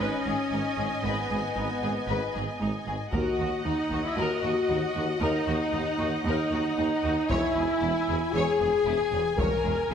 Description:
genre	cinematic, epic orchestral film score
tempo	115 BPM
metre	4/4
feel	straight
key	G# minor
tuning	A4 = 440 Hz
part	rich studio violin section	melody	0.0-9.9 s	F#5 to G#5	-38 LUFS	left 3 dB	none
part	rich studio violin section	second line	0.0-9.9 s	D#4 to D#5	-32 LUFS	left 2 dB	none
part	rich studio viola section	accompaniment	0.0-9.9 s	B3 to A#4	-34 LUFS	equal	none
part	clear French horn section	sustained chords	0.0-9.9 s	B3 to A#4	-28 LUFS	left 2 dB	none
part	rich symphonic cello section	bass	0.0-9.9 s	D#2 to G#2	-35 LUFS	right 2 dB	none
part	rich symphonic double bass section	bass	0.0-9.9 s	E1 to D#2	-36 LUFS	right 4 dB	none
part	warm tuba	bass	0.0-9.9 s	E1 to D#2	-36 LUFS	right 2 dB	none
part	impact	sound effects	0.2-1.0 s	none	barely audible	none	none
part	solo taiko drums	drums	3.1-4.2, 7.3-9.9 s	none	-33 LUFS	equal	none
room	moderate concert hall reverb, RT60 1.9 s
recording	none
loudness	-25 LUFS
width	side -7 dB against mid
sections	0.0-9.9 A section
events	impact 0.0-1.0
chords	0.0 G#m; 3.1 D#m; 7.3 C#m/E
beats	0.52 | 1.04 1.56 2.08 2.60 | 3.13 3.65 4.17 4.69 | 5.21 5.73 6.26 6.78 | 7.30 7.82 8.34 8.86 | 9.38 9.91

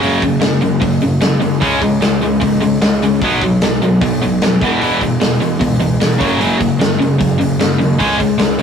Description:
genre	punk rock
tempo	151 BPM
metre	4/4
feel	straight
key	unclear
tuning	A4 = 440 Hz
part	overdriven electric guitar	riff	0.0-8.6 s	E2 to C#4	-14 LUFS	equal	none
part	fuzz picked electric bass	bass	0.0-8.6 s	E1 to E#2	-21 LUFS	right 1 dB	overdrive
part	big rock drum kit	drums	0.0-8.6 s	hi-hat, kick drum, snare drum	-18 LUFS	left 1 dB	none
room	moderate small room reverb, RT60 0.5 s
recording	rough rehearsal-room recording, warm saturation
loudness	-12 LUFS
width	side -7 dB against mid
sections	0.0-8.6 A section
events	none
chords	0.0 F#5; 1.6 C#5; 3.2 B5; 4.6 E5; 6.2 F#5; 8.0 C#5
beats	| 0.03 0.43 0.83 1.23 | 1.62 2.02 2.42 2.82 | 3.22 3.62 4.02 4.41 | 4.81 5.21 5.61 6.01 | 6.41 6.80 7.20 7.60 | 8.00 8.40

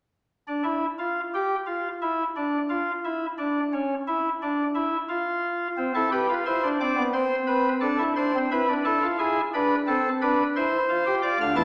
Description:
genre	classical, baroque-style 3-part fugue for pipe organ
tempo	88 BPM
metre	4/4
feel	straight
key	unclear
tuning	A4 = 437 Hz
part	pipe organ, cornet	solo	0.5-11.6 s	D2 to A5	-25 LUFS	equal	none
room	wet recital hall reverb, RT60 1.4 s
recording	none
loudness	-25 LUFS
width	mono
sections	0.3-11.6 A section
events	none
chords	0.3 N.C.; 5.8 Am/C; 8.5 E7; 9.9 Am/C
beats	| 0.30 0.99 1.68 2.37 | 3.05 3.74 4.42 5.10 | 5.78 6.46 7.14 7.83 | 8.51 9.19 9.87 10.55 | 11.24

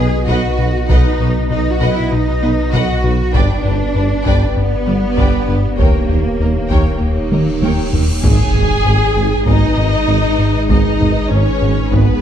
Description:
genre	cinematic, hybrid orchestral and electronic film score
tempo	98 BPM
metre	4/4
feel	straight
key	G# minor from 8.2 s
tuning	A4 = 438 Hz
part	warm symphonic violin section	melody	0.0-12.2 s	B4 to G#5	-26 LUFS	left 3 dB	none
part	dark symphonic violin section	second line	0.0-12.2 s	B3 to D#5	-25 LUFS	left 1 dB	none
part	warm studio viola section	accompaniment	0.0-12.2 s	B3 to B4	-24 LUFS	right 2 dB	none
part	ethereal airy pad	sustained chords	0.0-12.2 s	G#3 to C#5	-23 LUFS	right 1 dB	ensemble chorus, built-in reverb
part	mellow French horn section	sustained chords	0.0-12.1 s	B3 to D#5	-26 LUFS	left 3 dB	none
part	rubbery square bass	riff	0.0-12.1 s	D#2 to B3	-18 LUFS	left 2 dB	none
part	rich symphonic cello section	bass	0.0-12.0 s	G#2 to G#4	-22 LUFS	right 2 dB	none
part	warm sub bass	bass	0.0-12.2 s	D#1 to B1	-22 LUFS	equal	none
part	warm symphonic double bass section	bass	0.0-12.0 s	G1 to D#2	-23 LUFS	right 4 dB	none
part	warm tuba	bass	0.0-12.0 s	G1 to D#2	-23 LUFS	right 5 dB	none
part	taiko ensemble	drums	0.3-12.2 s	none	-18 LUFS	equal	none
part	cymbal swell and impact	sound effects	7.6-10.7 s	none	-23 LUFS	equal	none
room	moderate scoring stage reverb, RT60 1.8 s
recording	dark, warm production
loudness	-12 LUFS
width	side -9 dB against mid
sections	0.0-8.2 A section; 8.2-12.2 B section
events	drum fill 7.3-8.2; cymbal swell 7.6-8.2; impact 8.2-10.7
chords	0.0 B; 3.3 G; 5.8 D#7; 8.2 G#m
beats	0.28 | 0.90 1.51 2.12 2.73 | 3.35 3.96 4.57 5.18 | 5.79 6.41 7.02 7.63 | 8.24 8.86 9.47 10.08 | 10.69 11.30 11.92

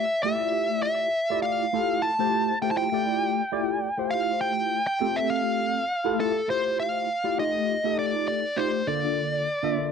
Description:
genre	jazz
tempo	101 BPM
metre	4/4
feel	swing 55% on 16ths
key	F major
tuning	A4 = 440 Hz
part	dark smooth lead guitar	melody	0.0-9.9 s	A4 to A5	-25 LUFS	equal	overdrive, slapback echo
part	tine electric piano	accompaniment	0.0-9.9 s	D3 to E5	-27 LUFS	equal	medium stereo tremolo, phaser
room	light reverb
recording	dry, close 1970s-style studio recording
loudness	-23 LUFS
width	side -6 dB against mid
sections	0.0-6.5 A section; 6.5-9.9 B section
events	none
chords	0.0 Fmaj9; 7.4 Ebmaj9#11; 8.9 Bbmaj7/D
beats	0.55 1.14 | 1.74 2.33 2.92 3.52 | 4.11 4.71 5.30 5.89 | 6.49 7.08 7.68 8.28 | 8.87 9.47

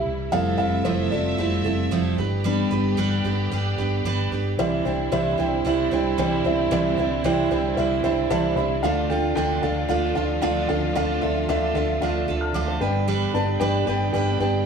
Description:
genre	pop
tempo	113 BPM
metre	4/4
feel	straight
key	C major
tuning	A4 = 444 Hz
part	felt-muted upright piano	accompaniment	0.0-14.7 s	G2 to F6	-24 LUFS	left 2 dB	none
part	warm studio string section	sustained chords	0.0-14.7 s	C3 to G5	-31 LUFS	right 2 dB	none
part	vintage muted fingered electric bass	bass	0.1-14.6 s	F1 to D2	-27 LUFS	equal	none
part	picked steel-string acoustic guitar	riff	0.3-14.7 s	C3 to C5	-26 LUFS	right 10 dB	none
room	moderate large studio reverb, RT60 1.2 s, studio reverb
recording	studio ambience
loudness	-20 LUFS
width	side -6 dB against mid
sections	0.0-4.6 A section; 4.6-14.7 B section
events	felt piano solo 0.0-4.6; felt piano fill 7.8-8.8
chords	0.3 Fmaj7; 2.2 G; 4.6 Cadd9; 8.8 Dm; 12.8 G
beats	| 0.33 0.86 1.39 1.92 | 2.46 2.99 3.52 4.05 | 4.58 5.11 5.65 6.18 | 6.71 7.24 7.77 8.30 | 8.83 9.36 9.89 10.42 | 10.95 11.48 12.01 12.54 | 13.07 13.60 14.13

